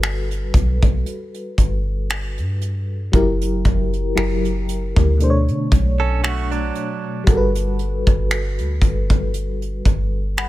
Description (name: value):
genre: contemporary R&B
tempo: 58 BPM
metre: 4/4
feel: swing 54% on 16ths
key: unclear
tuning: A4 = 440 Hz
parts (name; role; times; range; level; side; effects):
- FM electric piano with tremolo; accompaniment; 0.0-10.5 s; B2 to B5; -24 LUFS; left 1 dB; phaser
- soft 808-style bass; bass; 0.0-10.5 s; F#1 to D3; -20 LUFS; equal; none
- soft brush drum kit; drums; 0.0-10.5 s; finger snaps, hi-hat, kick drum; -19 LUFS; equal; none
- direct-recorded clean electric guitar; arpeggios; 6.0-7.2 s; F#3 to A4; -26 LUFS; right 9 dB; tape echo
room: little or no reverb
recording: none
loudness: -17 LUFS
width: side -16 dB against mid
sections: 0.0-10.5 A section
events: none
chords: 0.0 Gmaj9; 3.1 F#7b9; 5.2 Bm9; 7.3 Gmaj9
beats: 0.03 1.06 2.10 | 3.13 4.17 5.20 6.24 | 7.27 8.30 9.34 10.37